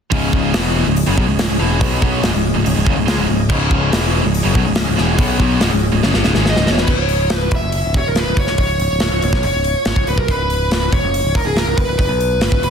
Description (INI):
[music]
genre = hard rock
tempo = 142 BPM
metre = 4/4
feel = straight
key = C# minor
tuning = A4 = 441 Hz
[part]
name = overdriven tonewheel organ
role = sustained chords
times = 0.1-6.8 s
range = C#4 to D#5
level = -28 LUFS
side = right 1 dB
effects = slow rotary speaker, chorus vibrato
[part]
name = cranked stack guitar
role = riff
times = 0.1-6.9 s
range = C#2 to B3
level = -20 LUFS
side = left 11 dB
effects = overdrive, phaser
[part]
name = scooped high-gain guitar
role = riff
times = 0.1-6.9 s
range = C#2 to B3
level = -21 LUFS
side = right 13 dB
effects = distortion
[part]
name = modern bright picked electric bass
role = bass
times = 0.1-12.7 s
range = C#1 to C#2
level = -19 LUFS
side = right 1 dB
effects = none
[part]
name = tight metal drum kit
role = drums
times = 0.1-12.7 s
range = crash cymbal, hi-hat, kick drum, snare drum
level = -18 LUFS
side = equal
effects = none
[part]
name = high-gain lead guitar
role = melody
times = 6.5-12.7 s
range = G#4 to E5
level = -19 LUFS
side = equal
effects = distortion, slapback echo
[sound]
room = light reverb, small room ambience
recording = dense, heavily limited modern master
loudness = -14 LUFS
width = side -7 dB against mid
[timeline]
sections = 0.1-6.9 A section; 6.9-12.7 B section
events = drum fill 6.0-6.9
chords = 0.1 C#m; 6.9 N.C.